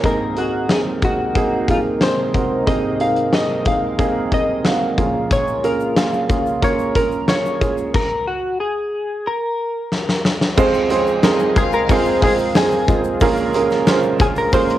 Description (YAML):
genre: piano-driven pop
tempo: 91 BPM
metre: 4/4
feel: straight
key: unclear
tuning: A4 = 440 Hz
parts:
  - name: warm upright piano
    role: accompaniment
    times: 0.0-14.8 s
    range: F1 to C5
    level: -19 LUFS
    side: right 4 dB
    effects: none
  - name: chorused pulse-width pad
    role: sustained chords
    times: 0.0-14.8 s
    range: C3 to Bb4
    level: -27 LUFS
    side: left 1 dB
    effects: none
  - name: huge arena drum kit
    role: drums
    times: 0.0-14.8 s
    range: crash cymbal, hi-hat, kick drum, snare drum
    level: -20 LUFS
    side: left 1 dB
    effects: cassette tape
  - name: direct-recorded clean electric guitar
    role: melody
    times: 0.1-14.8 s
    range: F4 to F5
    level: -21 LUFS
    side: left 2 dB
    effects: analog chorus, cassette tape
  - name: egg shaker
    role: percussion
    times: 5.3-14.8 s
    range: none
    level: -47 LUFS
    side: left 11 dB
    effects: none
  - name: warm studio violin section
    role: second line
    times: 10.6-12.5 s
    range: C4 to F5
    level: -25 LUFS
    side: left 7 dB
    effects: tape echo
room: moderate studio reverb, RT60 0.7 s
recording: home recording on cassette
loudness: -15 LUFS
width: side -13 dB against mid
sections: 0.0-10.6 A section; 10.6-14.8 B section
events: stop 7.9-10.6; drum fill 9.9-10.6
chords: 0.0 Abadd9; 5.0 Bbm7; 7.9 N.C.; 10.6 Fm; 13.2 Bbm7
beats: | 0.04 0.70 1.36 2.01 | 2.67 3.33 3.99 4.65 | 5.31 5.97 6.63 7.29 | 7.94 8.60 9.26 9.92 | 10.58 11.24 11.90 12.55 | 13.21 13.87 14.53